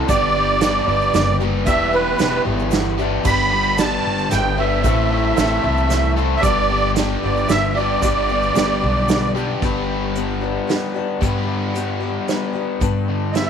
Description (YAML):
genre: folk rock and heartland rock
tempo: 113 BPM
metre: 3/4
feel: straight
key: G major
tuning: A4 = 441 Hz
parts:
  - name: dark baby grand piano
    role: accompaniment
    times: 0.0-9.6 s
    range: G4 to F#5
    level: -31 LUFS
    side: right 11 dB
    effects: none
  - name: picked acoustic archtop guitar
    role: accompaniment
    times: 0.0-13.5 s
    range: G2 to B4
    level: -25 LUFS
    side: left 12 dB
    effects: none
  - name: overdriven semi-hollow guitar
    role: riff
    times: 0.0-13.5 s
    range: G2 to B4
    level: -23 LUFS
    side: left 1 dB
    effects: none
  - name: musette accordion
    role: melody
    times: 0.1-9.3, 13.3-13.5 s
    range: B4 to B5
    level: -19 LUFS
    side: right 3 dB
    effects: none
  - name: upright bass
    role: bass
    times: 0.1-13.5 s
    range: E1 to G2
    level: -23 LUFS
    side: equal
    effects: none
  - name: unplugged drum kit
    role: drums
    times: 0.1-13.5 s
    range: crash cymbal, hi-hat, kick drum, snare drum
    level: -23 LUFS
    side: right 3 dB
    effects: none
  - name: tube shaker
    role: percussion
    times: 0.1-9.4 s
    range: none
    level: -39 LUFS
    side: right 13 dB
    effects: none
room: light reverb, studio reverb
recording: 1960s-style stereo with parts hard left and right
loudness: -16 LUFS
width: side -7 dB against mid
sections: 0.0-9.6 A section; 9.6-12.8 B section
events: grand piano fill 8.8-9.6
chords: 0.1 G; 1.7 Em7; 3.3 G; 4.8 Am; 6.4 G